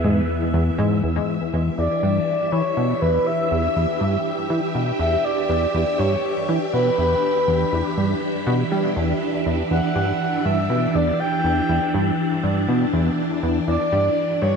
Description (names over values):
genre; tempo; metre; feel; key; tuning
ambient, sequencer-driven space music; 121 BPM; 4/4; straight; E dorian; A4 = 440 Hz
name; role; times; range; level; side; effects
breathy flute-like synth lead; melody; 0.0-14.6 s; B4 to G5; -24 LUFS; equal; lush chorus, shimmer reverb, ping-pong delay
phased string machine; sustained chords; 0.0-14.6 s; E3 to E5; -23 LUFS; equal; ensemble chorus, phaser, shimmer reverb
plucky analog bass; riff; 0.0-14.6 s; E2 to G3; -22 LUFS; equal; lush chorus, ping-pong delay
analog drone; bass; 0.0-1.0 s; E2; -29 LUFS; equal; chorus
room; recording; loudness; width
wet plate reverb, RT60 3.1 s; cassette tape; -18 LUFS; side -6 dB against mid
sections
0.0-1.0 A section; 1.0-14.6 B section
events
filter sweep on analog synth bass 0.0-1.0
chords
0.0 E; 1.0 Em7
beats
0.04 0.53 | 1.03 1.52 2.02 2.52 | 3.01 3.51 4.00 4.50 | 5.00 5.49 5.99 6.48 | 6.98 7.48 7.97 8.47 | 8.96 9.46 9.96 10.45 | 10.95 11.44 11.94 12.44 | 12.93 13.43 13.92 14.42